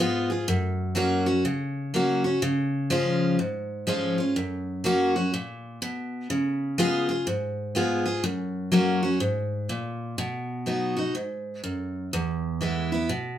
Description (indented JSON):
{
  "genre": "country",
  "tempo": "124 BPM",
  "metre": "4/4",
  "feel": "swing 64% on 8ths",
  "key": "unclear",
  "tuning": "A4 = 440 Hz",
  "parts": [
    { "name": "picked steel-string acoustic guitar", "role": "solo", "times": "0.0-13.4 s", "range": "E2 to G#4", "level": "-24 LUFS", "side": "equal", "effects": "none" }
  ],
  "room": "moderate studio reverb, RT60 0.5 s",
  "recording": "band playing live in one room",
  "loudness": "-24 LUFS",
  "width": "side -11 dB against mid",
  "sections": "0.0-10.2 A section; 10.2-13.4 B section",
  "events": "none",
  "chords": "0.5 F#; 2.4 C#; 4.4 F#; 6.3 C#7; 8.2 F#; 10.2 B; 12.1 E",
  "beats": "| 0.48 0.96 1.45 1.93 | 2.42 2.90 3.39 3.87 | 4.36 4.84 5.33 5.81 | 6.30 6.78 7.27 7.75 | 8.24 8.72 9.21 9.69 | 10.18 10.66 11.15 11.64 | 12.12 12.61 13.09"
}